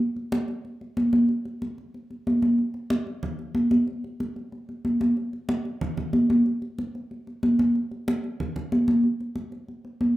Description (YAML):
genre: jazz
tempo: 186 BPM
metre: 4/4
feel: straight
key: none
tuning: none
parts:
  - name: congas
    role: percussion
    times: 0.0-10.2 s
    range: none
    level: -23 LUFS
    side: equal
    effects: none
room: light reverb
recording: minimal, uncompressed stereo recording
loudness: -23 LUFS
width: side -16 dB against mid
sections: 0.0-2.6 A section; 2.6-10.2 B section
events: none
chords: none